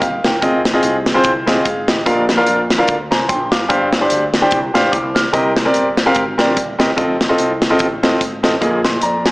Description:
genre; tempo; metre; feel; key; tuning
uptempo gospel; 147 BPM; 4/4; swing 56% on 8ths; unclear; A4 = 442 Hz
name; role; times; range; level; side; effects
clear baby grand piano; accompaniment; 0.0-9.3 s; G2 to F6; -15 LUFS; equal; none
woody fretless electric bass; bass; 0.0-9.3 s; Eb1 to F2; -25 LUFS; equal; ensemble chorus
modern studio drum kit; drums; 0.0-9.3 s; hi-hat, kick drum, snare drum; -18 LUFS; equal; none
room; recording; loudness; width
moderate lush hall reverb, RT60 1.7 s, small room reverb; big arena sound, small speaker sound; -13 LUFS; side -23 dB against mid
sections
0.0-9.3 A section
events
grand piano fill 2.9-3.7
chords
0.4 Fm7; 2.1 G7sus4; 5.3 Cm7; 7.0 F7; 8.6 Bb7sus4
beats
0.02 | 0.43 0.84 1.25 1.66 | 2.06 2.47 2.88 3.29 | 3.70 4.11 4.52 4.93 | 5.34 5.75 6.16 6.57 | 6.97 7.38 7.79 8.20 | 8.61 9.02

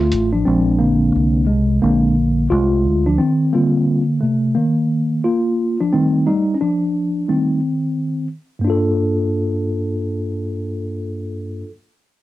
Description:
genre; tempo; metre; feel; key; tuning
hip hop; 88 BPM; 4/4; swing 63% on 16ths; G minor; A4 = 440 Hz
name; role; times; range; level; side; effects
mellow tine electric piano; accompaniment; 0.0-11.7 s; G2 to A4; -16 LUFS; equal; medium stereo tremolo, cassette tape
deep dub fingered electric bass; bass; 0.0-3.2 s; A1 to D2; -19 LUFS; equal; none
room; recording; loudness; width
light reverb; home recording on cassette; -16 LUFS; side -15 dB against mid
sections
0.0-8.6 A section; 8.6-11.4 B section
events
tine electric piano solo 0.0-8.6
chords
0.5 Bb7; 3.2 Eb69; 5.9 F9; 8.6 Gm9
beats
| 0.47 1.15 1.83 2.51 | 3.19 3.88 4.56 5.24 | 5.92 6.60 7.28 7.97 | 8.65 9.33 10.01 10.69

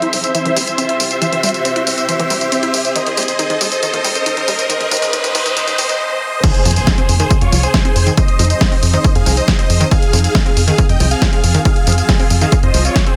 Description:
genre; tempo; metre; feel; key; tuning
uplifting trance; 138 BPM; 4/4; straight; F minor; A4 = 441 Hz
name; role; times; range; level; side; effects
big supersaw lead; melody; 0.0-13.2 s; F4 to G5; -21 LUFS; equal; phaser, sidechain pumping, low-pass filter, digital delay
shimmering ambient pad; sustained chords; 0.0-13.2 s; C3 to Ab4; -29 LUFS; equal; chorus, built-in reverb, sidechain pumping
unison pluck; arpeggios; 0.0-13.1 s; Eb3 to E4; -26 LUFS; equal; sidechain pumping, digital delay
big-room dance drum kit; drums; 0.0-13.2 s; crash cymbal, hi-hat, snare drum, tambourine; -22 LUFS; equal; studio reverb
riser, noise sweep and impact; sound effects; 0.0-8.2 s; none; -26 LUFS; equal; none
tight sequencer bass; bass; 0.1-12.9 s; G1 to F2; -18 LUFS; equal; sidechain pumping, high-pass filter
electronic kick drum; drums; 6.4-13.0 s; none; -17 LUFS; equal; overdrive, studio reverb
room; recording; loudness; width
light reverb; high-pass filter; -14 LUFS; mono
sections
0.0-6.4 A section; 6.4-13.2 B section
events
build-up 0.0-6.4; riser 0.0-6.0; filter sweep on synth arpeggio sound 0.0-6.4; noise sweep 4.7-6.4; break 6.0-6.4; drop 6.4-13.2; impact 6.4-8.2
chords
0.0 C; 3.0 Eb7sus4; 6.4 Fm7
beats
0.35 0.78 | 1.22 1.65 2.09 2.52 | 2.96 3.39 3.83 4.26 | 4.70 5.13 5.57 6.00 | 6.43 6.87 7.30 7.74 | 8.17 8.61 9.04 9.48 | 9.91 10.35 10.78 11.22 | 11.65 12.09 12.52 12.96

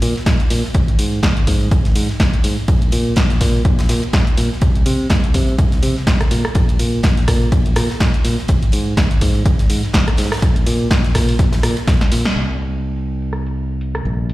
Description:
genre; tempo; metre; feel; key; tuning
piano house; 124 BPM; 4/4; swing 57% on 16ths; unclear; A4 = 441 Hz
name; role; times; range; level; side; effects
modern bright fingered electric bass; bass; 0.0-14.3 s; Ab1 to C3; -19 LUFS; equal; tube saturation, sidechain pumping
huge arena drum kit; drums; 0.0-12.4 s; ride cymbal, snare drum; -32 LUFS; right 1 dB; high-pass filter on cymbals, high-pass filter on snare, high-pass filter on room
punchy analog drum machine; drums; 0.0-14.3 s; hi-hat, rim click, snare drum; -22 LUFS; equal; low-pass filter on hats, low-pass filter on snare
electronic kick drum; drums; 0.3-12.0 s; none; -16 LUFS; equal; none
room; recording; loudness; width
small room ambience; played on a big sound system in a bare room, large studio reverb; -14 LUFS; side -18 dB against mid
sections
0.0-12.4 A section; 12.4-14.3 B section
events
drum fill 11.9-12.4; band accent 12.2; filter sweep on drum 12.4-14.3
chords
none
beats
0.26 | 0.75 1.23 1.71 2.20 | 2.68 3.17 3.65 4.13 | 4.62 5.10 5.58 6.07 | 6.55 7.04 7.52 8.00 | 8.49 8.97 9.46 9.94 | 10.42 10.91 11.39 11.88 | 12.36 12.84 13.33 13.81 | 14.29

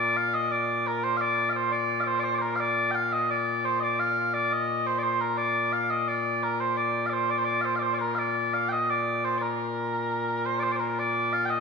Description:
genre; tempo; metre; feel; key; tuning
scottish traditional, Scottish pipe music; 86 BPM; 2/4; straight; Bb major; A4 = 441 Hz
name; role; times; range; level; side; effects
mellow small bagpipes; solo; 0.0-11.6 s; Bb2 to G5; -24 LUFS; equal; none
room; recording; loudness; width
wet recital hall reverb, RT60 1.7 s; recorded in a church or concert hall; -24 LUFS; side -5 dB against mid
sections
0.0-10.8 A section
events
none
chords
none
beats
0.34 | 1.03 1.73 | 2.43 3.13 | 3.82 4.52 | 5.22 5.92 | 6.62 7.31 | 8.01 8.71 | 9.40 10.10 | 10.80 11.50

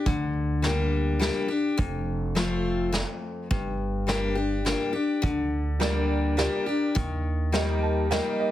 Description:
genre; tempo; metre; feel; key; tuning
honky-tonk and classic country; 104 BPM; 3/4; straight; G minor; A4 = 442 Hz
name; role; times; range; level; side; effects
picked steel-string acoustic guitar; accompaniment; 0.0-8.5 s; F2 to G4; -26 LUFS; left 3 dB; none
upright bass; bass; 0.1-8.2 s; F1 to Eb2; -28 LUFS; right 1 dB; none
vintage brush drum kit; drums; 0.1-8.2 s; hi-hat, kick drum, snare drum; -30 LUFS; equal; none
honky-tonk upright piano; accompaniment; 5.8-8.5 s; G4 to A5; -31 LUFS; right 6 dB; none
room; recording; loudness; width
light reverb; heavily compressed radio sound, multiband compression; -24 LUFS; side -13 dB against mid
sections
0.0-8.5 A section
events
honky-tonk piano fill 7.5-8.5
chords
0.0 Gm; 1.8 F; 3.5 Gm; 7.0 Eb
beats
| 0.06 0.63 1.21 | 1.78 2.36 2.93 | 3.51 4.08 4.66 | 5.23 5.81 6.38 | 6.96 7.53 8.11

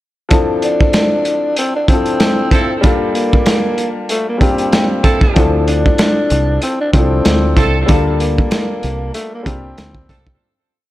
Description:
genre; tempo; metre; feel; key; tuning
hip hop, boom-bap hip-hop; 95 BPM; 4/4; swing 56% on 16ths; D minor; A4 = 443 Hz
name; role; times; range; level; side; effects
warm upright piano; accompaniment; 0.3-10.4 s; F3 to A4; -18 LUFS; left 3 dB; cassette tape, high-pass filter, low-pass filter
crunchy breakbeat drum kit; drums; 0.3-10.4 s; hi-hat, kick drum, snare drum; -14 LUFS; equal; none
growling tenor saxophone; melody; 0.6-10.4 s; A3 to D4; -19 LUFS; equal; high-pass filter, low-pass filter, digital delay
finger snap; percussion; 0.9-9.9 s; none; -30 LUFS; right 4 dB; none
edgy saxophone section; stabs; 2.5-10.3 s; F3 to A4; -20 LUFS; right 4 dB; high-pass filter, low-pass filter, digital delay
deep dub fingered electric bass; bass; 5.4-10.4 s; C2 to D2; -16 LUFS; equal; none
room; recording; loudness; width
small room ambience; none; -12 LUFS; side -15 dB against mid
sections
0.3-10.4 hook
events
fade-out 7.9-10.4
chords
0.3 Dm9; 2.8 Gm9; 5.4 Dm9; 7.9 Gm9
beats
| 0.31 0.94 1.57 2.20 | 2.84 3.47 4.10 4.73 | 5.36 5.99 6.62 7.26 | 7.89 8.52 9.15 9.78

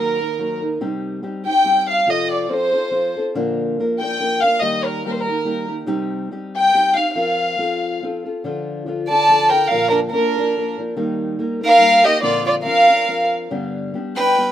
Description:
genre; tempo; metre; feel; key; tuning
mexican folk, mariachi; 142 BPM; 3/4; swing 55% on 8ths; Bb major; A4 = 438 Hz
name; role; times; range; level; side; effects
dark chamber violin section; melody; 0.0-14.5 s; Bb4 to A5; -16 LUFS; equal; none
nylon-string guitar; accompaniment; 0.0-14.5 s; G2 to Bb4; -23 LUFS; left 1 dB; none
rich violin; second line; 9.1-14.5 s; D4 to D5; -22 LUFS; right 3 dB; none
room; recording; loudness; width
little or no reverb; rough home demo mix; -16 LUFS; side -11 dB against mid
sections
0.0-14.5 A section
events
none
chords
0.0 Ebm; 0.8 Cm; 2.1 F/C; 3.3 Bb; 4.6 Eb; 5.9 Cm; 7.1 Fsus4; 7.6 F; 8.4 Dm; 9.7 Bb; 11.0 Eb; 12.2 Bbadd9; 13.5 G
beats
0.38 | 0.80 1.22 1.64 | 2.06 2.49 2.92 | 3.34 3.77 4.19 | 4.62 5.04 5.46 | 5.88 6.30 6.72 | 7.14 7.57 8.00 | 8.43 8.86 9.29 | 9.71 10.13 10.55 | 10.97 11.39 11.81 | 12.23 12.65 13.08 | 13.51 13.94 14.37

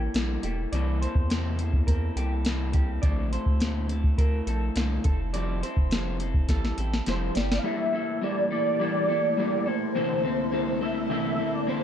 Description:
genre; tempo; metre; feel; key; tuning
indie pop, bedroom pop; 104 BPM; 4/4; straight; G dorian; A4 = 439 Hz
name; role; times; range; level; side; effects
electric guitar through a small old amp; accompaniment; 0.0-11.8 s; Bb2 to A4; -30 LUFS; left 3 dB; wide subtle chorus, warbly pitch drift
round analog bass; bass; 0.0-7.6 s; E1 to E2; -28 LUFS; equal; none
soft vintage rhythm box; drums; 0.1-7.6 s; hi-hat, kick drum, snare drum; -26 LUFS; equal; none
electric guitar through a small old amp; second line; 0.4-7.5 s; G4 to D5; -39 LUFS; right 2 dB; wide subtle chorus, slapback echo
warm velvety synth lead; melody; 7.1-11.8 s; C5 to F5; -27 LUFS; right 1 dB; ensemble chorus, slapback echo
string machine, full ensemble; sustained chords; 7.6-11.8 s; C2 to G4; -31 LUFS; right 1 dB; ensemble chorus
room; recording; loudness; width
light reverb; dark, warm production; -24 LUFS; side -9 dB against mid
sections
0.0-7.6 A section; 7.6-11.8 B section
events
drum fill 6.5-7.6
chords
0.0 Gm69; 0.7 C6; 3.0 Bbmaj9#11; 5.0 Fmaj9; 7.6 Gm69; 10.0 C13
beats
0.14 | 0.72 1.30 1.88 2.45 | 3.03 3.61 4.18 4.76 | 5.34 5.92 6.49 7.07 | 7.65 8.22 8.80 9.38 | 9.95 10.53 11.11 11.69

